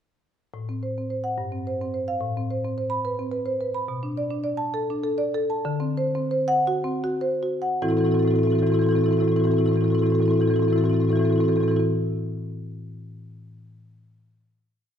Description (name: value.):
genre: classical, contemporary piece for solo marimba.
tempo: 50-72 BPM (dotted quarters).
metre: 6/8.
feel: rubato.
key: A minor.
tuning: A4 = 440 Hz.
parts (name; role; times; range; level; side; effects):
marimba with medium mallets; solo; 0.5-11.8 s; G2 to B5; -22 LUFS; equal; none.
room: moderate recital hall reverb, RT60 1.4 s.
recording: minimal, uncompressed stereo recording.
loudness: -21 LUFS.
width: side -8 dB against mid.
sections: 0.5-7.8 A section; 7.8-12.4 final chord.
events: slowing down 3.1-7.8.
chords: 0.5 Am6; 1.4 G7sus4; 2.2 Amadd9; 3.9 Bm7; 5.6 D7; 7.8 Am6.